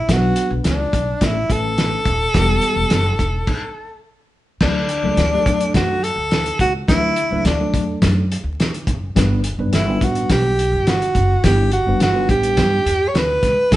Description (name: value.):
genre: uptempo 1960s-style soul.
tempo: 106 BPM.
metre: 4/4.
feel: straight.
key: D major.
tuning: A4 = 440 Hz.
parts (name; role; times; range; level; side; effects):
breathy tenor saxophone; melody; 0.0-13.8 s; D4 to C#5; -19 LUFS; equal; none.
upright bass; bass; 0.0-13.8 s; Eb1 to G2; -21 LUFS; equal; none.
mellow tine electric piano; accompaniment; 0.1-13.8 s; E3 to B4; -23 LUFS; left 1 dB; medium stereo tremolo.
cloth-damped thuddy drum kit; drums; 0.1-13.8 s; crash cymbal, hi-hat, kick drum, snare drum; -19 LUFS; equal; none.
room: moderate stone room reverb, RT60 1.0 s.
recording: band playing live in one room, vinyl crackle, nothing above 10.7 kHz.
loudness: -15 LUFS.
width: side -15 dB against mid.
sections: 0.0-4.6 A section; 4.6-13.8 B section.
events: stop 3.5-4.6.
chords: 0.1 Bm; 1.2 A; 2.4 Em; 3.5 N.C.; 4.6 D.